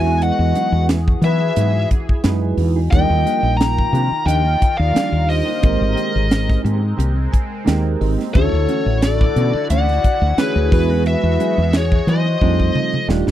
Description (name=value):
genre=electric jazz fusion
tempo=88 BPM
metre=4/4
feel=swing 53% on 16ths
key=unclear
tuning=A4 = 440 Hz
part: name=bluesy overdriven lead guitar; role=melody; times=0.0-13.1 s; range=Cb5 to Bb5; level=-22 LUFS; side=equal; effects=distortion
part: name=breathy mellow concert flute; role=second line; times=0.0-13.1 s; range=Ab4 to G5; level=-24 LUFS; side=left 16 dB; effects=none
part: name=bell-like tine electric piano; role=accompaniment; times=0.0-13.3 s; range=G3 to Ab5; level=-23 LUFS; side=right 9 dB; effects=medium stereo tremolo, phaser
part: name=sweeping resonant pad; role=sustained chords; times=0.0-13.3 s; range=D3 to Bb4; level=-29 LUFS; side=equal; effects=chorus
part: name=mellow electric guitar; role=stabs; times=0.0-13.3 s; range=Eb3 to G#4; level=-27 LUFS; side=right 1 dB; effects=wide subtle chorus
part: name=woody fretless electric bass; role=bass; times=0.0-13.3 s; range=Eb1 to E3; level=-18 LUFS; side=equal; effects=none
part: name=crisp fusion drum kit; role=drums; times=0.2-13.3 s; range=hi-hat, kick drum, snare drum, toms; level=-17 LUFS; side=equal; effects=none
room=little or no reverb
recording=dry, close 1970s-style studio recording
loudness=-14 LUFS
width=side -12 dB against mid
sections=0.0-13.3 A section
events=tine electric piano fill 7.0-8.3; drum fill 12.4-13.3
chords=0.0 Emaj9; 2.9 Ebmaj9; 5.6 Abmaj9; 8.3 Dmaj9; 10.7 Emaj9; 12.4 F13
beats=| 0.22 0.89 1.57 2.25 | 2.93 3.60 4.28 4.96 | 5.64 6.31 6.99 7.67 | 8.35 9.03 9.70 10.38 | 11.06 11.74 12.41 13.09